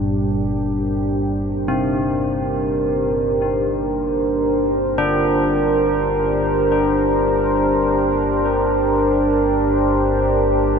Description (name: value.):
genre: dark ambient drone.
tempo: free time.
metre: none.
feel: none.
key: G minor.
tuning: A4 = 440 Hz.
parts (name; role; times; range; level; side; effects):
deep dark ambient pad; sustained chords; 0.0-10.8 s; D4 to C5; -17 LUFS; right 1 dB; chorus, built-in reverb.
carillon bells; arpeggios; 0.0-10.8 s; G2 to D4; -24 LUFS; left 2 dB; ping-pong delay.
deep rumbling drone; drone; 1.1-10.8 s; G1 to G2; -28 LUFS; equal; built-in reverb.
room: wet huge ambient reverb, RT60 7.9 s.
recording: none.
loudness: -16 LUFS.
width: side -6 dB against mid.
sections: 0.0-10.8 A section.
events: fade-in on synth drone 0.0-10.8.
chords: 0.0 Gm.